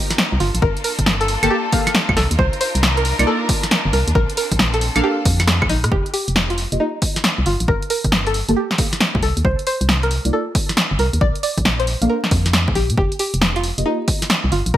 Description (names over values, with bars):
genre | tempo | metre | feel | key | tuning
UK garage, two-step garage | 136 BPM | 4/4 | swing 65% on 16ths | unclear | A4 = 440 Hz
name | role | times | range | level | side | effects
rich studio violin section | sustained chords | 0.0-5.9 s | Bb3 to Bb4 | -27 LUFS | left 1 dB | sidechain pumping
punchy analog drum machine | drums | 0.1-14.7 s | claves, hi-hat, rim click, snare drum | -19 LUFS | equal | overdrive, gated reverb
organ-like FM bass | bass | 0.3-14.8 s | F1 to Bb2 | -20 LUFS | equal | tube saturation
string-like resonator pluck | melody | 0.4-14.8 s | Eb4 to D5 | -24 LUFS | equal | chorus, digital delay
electronic kick drum | drums | 0.6-14.8 s | none | -20 LUFS | equal | overdrive
deep mellow chord stab | stabs | 1.4-14.0 s | Bb3 to A5 | -22 LUFS | equal | chorus, digital delay
room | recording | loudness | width
light reverb, digital ambience | bright 1980s-style digital production, vinyl crackle | -15 LUFS | side -12 dB against mid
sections
0.0-5.9 A section; 5.9-14.8 B section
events
drop 0.0-5.9; drum fill 5.5-5.9; filter sweep on synth stab 5.9-14.8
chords
0.4 Gm9; 2.2 Cm11; 4.2 Bbmaj9; 5.9 F9sus4; 7.5 Gm9; 9.2 Cm11; 11.2 Bbmaj7; 13.0 F9sus4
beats
0.18 | 0.62 1.06 1.50 1.95 | 2.39 2.83 3.27 3.71 | 4.15 4.59 5.03 5.47 | 5.92 6.36 6.80 7.24 | 7.68 8.12 8.56 9.01 | 9.45 9.89 10.33 10.77 | 11.21 11.65 12.09 12.53 | 12.97 13.42 13.86 14.30 | 14.74